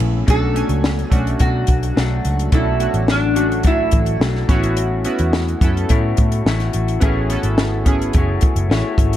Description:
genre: indie pop, bedroom pop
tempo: 107 BPM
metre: 4/4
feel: straight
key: unclear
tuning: A4 = 440 Hz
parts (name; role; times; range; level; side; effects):
- chorused retro synth keys; accompaniment; 0.0-9.2 s; A3 to G#5; -24 LUFS; right 3 dB; cassette tape
- electric guitar through a small old amp; accompaniment; 0.0-9.2 s; B2 to C#5; -24 LUFS; left 5 dB; wide subtle chorus, warbly pitch drift
- vintage muted picked electric bass; bass; 0.0-9.2 s; F#1 to B2; -20 LUFS; equal; none
- compact cocktail drum kit; drums; 0.0-9.2 s; hi-hat, kick drum, ride cymbal, snare drum; -18 LUFS; equal; none
- metal-body resonator slide guitar; melody; 0.3-4.5 s; D4 to A4; -22 LUFS; equal; lush chorus
room: little or no reverb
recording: dark, warm production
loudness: -15 LUFS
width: side -12 dB against mid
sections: 0.3-9.2 A section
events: none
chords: 0.3 Bm7; 4.5 A6

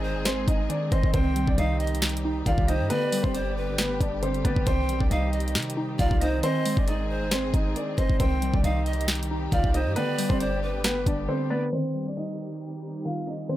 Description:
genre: hip hop, trap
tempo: 136 BPM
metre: 4/4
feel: half-time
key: C harmonic minor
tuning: A4 = 440 Hz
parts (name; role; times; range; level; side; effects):
- dark baby grand piano; melody; 0.0-13.6 s; B3 to F5; -29 LUFS; right 1 dB; low-pass filter, tape echo
- breathy bright pan flute; second line; 0.0-10.8 s; B4 to G5; -34 LUFS; right 3 dB; tape echo
- glassy digital keys; accompaniment; 0.0-13.6 s; D3 to Eb5; -32 LUFS; left 2 dB; chorus, low-pass filter
- dark symphonic string section; sustained chords; 0.0-13.6 s; D3 to Ab4; -37 LUFS; left 1 dB; none
- clean 808-style bass; bass; 0.0-11.3 s; G1 to C3; -28 LUFS; equal; none
- trap drum kit; drums; 0.3-11.2 s; hi-hat, kick drum, snare drum; -26 LUFS; equal; none
room: small room ambience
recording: low-pass filter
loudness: -23 LUFS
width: side -14 dB against mid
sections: 0.0-11.7 A section; 11.7-13.6 B section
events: drums muted 11.3-11.7; filter sweep 11.7-13.6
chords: 0.0 Ab; 1.1 Cm; 2.9 G; 4.7 Cm; 6.4 Ab; 8.2 Cm; 10.0 G; 11.7 Cm

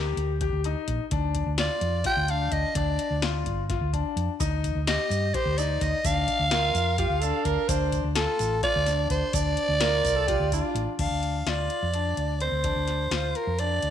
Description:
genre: progressive instrumental, band music in an uneven meter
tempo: 255 BPM (eighths)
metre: 7/8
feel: straight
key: D phrygian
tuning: A4 = 440 Hz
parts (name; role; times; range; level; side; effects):
- bright concert grand piano; arpeggios; 0.0-13.9 s; C4 to G4; -32 LUFS; left 12 dB; none
- hollow-body short-scale fingered electric bass; bass; 0.0-13.9 s; G1 to G2; -28 LUFS; right 1 dB; none
- electro analog drum machine; drums; 0.2-13.9 s; crash cymbal, hi-hat, kick drum, snare drum; -32 LUFS; left 2 dB; none
- growling soprano saxophone; melody; 1.6-13.9 s; A4 to G5; -27 LUFS; right 2 dB; tape echo
- tube shaker; percussion; 4.4-10.7 s; none; -38 LUFS; right 15 dB; none
- clear alto saxophone; second line; 6.5-11.0 s; F4 to C5; -30 LUFS; right 11 dB; none
room: light reverb, small room reverb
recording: 1960s-style stereo with parts hard left and right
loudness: -23 LUFS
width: side -9 dB against mid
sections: 0.0-11.0 A section; 11.0-13.9 B section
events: none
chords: 0.0 Ebmaj7; 1.1 Ebmaj7sus2 (rootless); 4.4 Cmadd9/D (rootless); 6.0 Dm; 9.3 Dm7

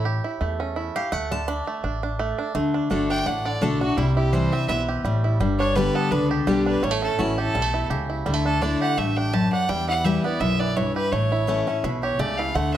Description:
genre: bluegrass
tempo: 168 BPM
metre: 4/4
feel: swing 54% on 8ths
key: D major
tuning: A4 = 437 Hz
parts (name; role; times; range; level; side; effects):
- picked steel-string acoustic guitar; accompaniment; 0.0-12.8 s; E2 to B5; -24 LUFS; left 2 dB; none
- bluegrass banjo; arpeggios; 0.0-12.8 s; D3 to G4; -28 LUFS; right 5 dB; none
- upright bass; bass; 0.0-12.8 s; G1 to E2; -28 LUFS; equal; none
- clear fiddle; melody; 3.1-12.8 s; D4 to A5; -26 LUFS; right 1 dB; none
room: light reverb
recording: none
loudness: -21 LUFS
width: side -11 dB against mid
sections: 0.0-2.5 A section; 2.5-12.8 B section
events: steel-string acoustic guitar solo 0.0-2.5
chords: 0.0 A; 1.1 D5; 2.5 D; 4.0 C; 5.4 G; 6.8 A; 8.3 Dsus2; 9.7 Em; 11.1 A

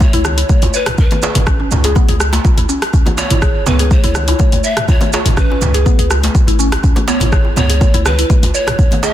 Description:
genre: afro house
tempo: 123 BPM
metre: 4/4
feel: straight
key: C# minor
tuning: A4 = 441 Hz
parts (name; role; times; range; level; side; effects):
- breathy mellow pan flute; melody; 0.0-9.1 s; B4 to E5; -21 LUFS; equal; dub echo
- warm 808-style bass; bass; 0.0-8.9 s; G#1 to C#2; -16 LUFS; equal; sidechain pumping
- deep house drum kit; drums; 0.0-9.1 s; hi-hat, rim click, shaker, toms; -19 LUFS; right 1 dB; soft clipping on snare
- electronic kick drum; drums; 0.0-8.9 s; none; -12 LUFS; equal; none
- congas; percussion; 0.0-9.0 s; none; -24 LUFS; left 4 dB; none
- djembe; percussion; 0.0-9.1 s; none; -23 LUFS; right 3 dB; none
- mallet-like synth pluck; arpeggios; 0.1-9.1 s; B3 to C#5; -21 LUFS; equal; analog chorus, sidechain pumping, dub echo
room: light reverb, digital ambience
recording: dense, heavily limited modern master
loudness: -10 LUFS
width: side -12 dB against mid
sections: 0.0-9.1 A section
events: none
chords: 0.0 C#7(no3)

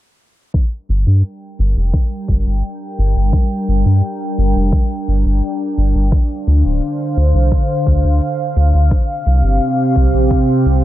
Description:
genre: synthwave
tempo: 86 BPM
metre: 4/4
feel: straight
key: G minor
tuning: A4 = 440 Hz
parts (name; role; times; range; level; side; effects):
- lush unison pad; sustained chords; 1.6-10.8 s; C3 to G5; -18 LUFS; equal; chorus, sidechain pumping
- electronic hi-hat; drums; 0.5-10.8 s; none; -60 LUFS; left 1 dB; none
- electronic kick drum; drums; 0.5-10.4 s; none; -15 LUFS; equal; overdrive
- round analog bass; bass; 0.9-10.8 s; D1 to G2; -13 LUFS; equal; tube saturation, sidechain pumping
room: digital ambience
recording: low-pass filter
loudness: -13 LUFS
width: side -14 dB against mid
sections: 0.5-10.8 A section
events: filter sweep on analog synth bass 0.5-10.8; filter sweep on analog synth pad 0.5-10.8; filter sweep 0.5-10.8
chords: 0.5 Gm; 6.1 Dm7; 8.9 Csus4

